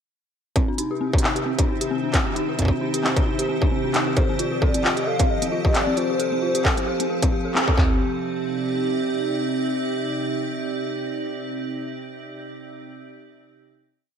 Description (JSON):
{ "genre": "IDM", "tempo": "133 BPM", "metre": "4/4", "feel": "swing 56% on 16ths", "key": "C minor", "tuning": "A4 = 440 Hz", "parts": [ { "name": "icy glass pad", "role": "sustained chords", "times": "0.8-12.1 s", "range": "C3 to F5", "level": "-26 LUFS", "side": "right 2 dB", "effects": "chorus, built-in reverb, vintage 12-bit sampler grit" }, { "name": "dark detuned synth bell", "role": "arpeggios", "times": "0.6-8.0 s", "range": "C4 to A4", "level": "-26 LUFS", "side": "left 1 dB", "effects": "chorus, digital delay" }, { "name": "industrial drum kit", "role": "drums", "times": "0.6-7.9 s", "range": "handclaps, kick drum, toms", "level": "-21 LUFS", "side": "equal", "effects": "distortion" }, { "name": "industrial drum kit", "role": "drums", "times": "0.6-7.7 s", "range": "handclaps, hi-hat", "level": "-26 LUFS", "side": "equal", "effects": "digital delay" }, { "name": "warbly nostalgic lead", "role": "melody", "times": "4.2-7.3 s", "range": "C5 to F5", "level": "-27 LUFS", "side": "left 2 dB", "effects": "ensemble chorus, ping-pong delay" } ], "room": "wet echo chamber reverb, RT60 1.6 s, digital ambience", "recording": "dark, warm production", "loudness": "-20 LUFS", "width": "side -7 dB against mid", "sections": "0.6-7.8 groove; 7.8-11.4 final chord", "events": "band accent 7.5", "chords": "0.6 Cmadd9; 4.2 Fadd9; 7.8 Cmadd9" }